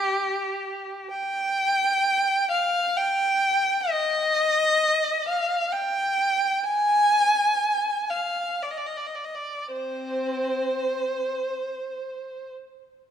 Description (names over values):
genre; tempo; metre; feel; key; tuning
classical, free, expressive piece for unaccompanied violin; 42-67 BPM; 3/4; rubato; C minor; A4 = 439 Hz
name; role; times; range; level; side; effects
rich violin; solo; 0.0-12.5 s; C4 to Ab5; -22 LUFS; equal; none
room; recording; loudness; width
moderate scoring stage reverb, RT60 2.1 s; none; -22 LUFS; side -8 dB against mid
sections
0.0-13.1 A section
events
none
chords
none